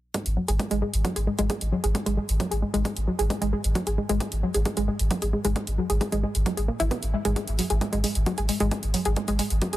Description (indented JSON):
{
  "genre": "driving peak-time techno",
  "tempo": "133 BPM",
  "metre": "4/4",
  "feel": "straight",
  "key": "unclear",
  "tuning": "A4 = 442 Hz",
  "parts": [
    { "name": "analog pluck", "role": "riff", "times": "0.1-9.8 s", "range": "F#3 to G#4", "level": "-27 LUFS", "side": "equal", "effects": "chorus, tube saturation, sidechain pumping, dub echo" },
    { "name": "electronic hi-hat", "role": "drums", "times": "0.1-9.8 s", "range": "none", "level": "-32 LUFS", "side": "right 1 dB", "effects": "sidechain pumping on hats" },
    { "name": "electronic kick drum", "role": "drums", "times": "0.1-9.7 s", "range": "none", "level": "-35 LUFS", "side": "equal", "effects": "high-pass filter on kick, high-pass filter on room" },
    { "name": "warm sub bass", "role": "bass", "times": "0.3-9.8 s", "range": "G#1", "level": "-25 LUFS", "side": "equal", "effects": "overdrive, sidechain pumping, low-pass filter" }
  ],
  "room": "little or no reverb",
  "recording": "faint mains hum",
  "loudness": "-23 LUFS",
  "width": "side -15 dB against mid",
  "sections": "0.1-9.8 A section",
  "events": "filter sweep on synth arpeggio sound 0.1-9.8",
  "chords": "none"
}